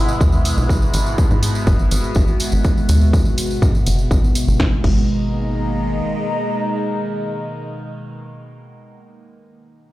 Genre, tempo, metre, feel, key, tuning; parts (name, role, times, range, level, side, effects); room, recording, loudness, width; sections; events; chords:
melodic techno; 123 BPM; 4/4; straight; G# minor; A4 = 440 Hz
evolving wavetable pad; sustained chords; 0.0-8.2 s; G#2 to F#4; -23 LUFS; equal; phaser, built-in reverb, sidechain pumping
tight sequencer bass; bass; 0.0-6.0 s; F#1 to G#2; -19 LUFS; equal; sidechain pumping
warbly tape-like pad; texture; 0.0-8.4 s; G#4 to B5; -28 LUFS; left 1 dB; chorus, built-in reverb, sidechain pumping
tambourine; percussion; 0.1-4.6 s; -30 LUFS; right 2 dB
electronic kick drum; drums; 0.2-5.0 s; -17 LUFS; equal; studio reverb
punchy analog drum machine; drums; 0.5-5.0 s; crash cymbal, hi-hat, snare drum; -26 LUFS; equal; studio reverb
light reverb; played on a big sound system in a bare room, large studio reverb; -15 LUFS; side -16 dB against mid
0.0-4.6 A section; 4.6-8.5 B section
fade-out on ambient pad 0.0-4.6
0.0 E; 4.6 G#madd9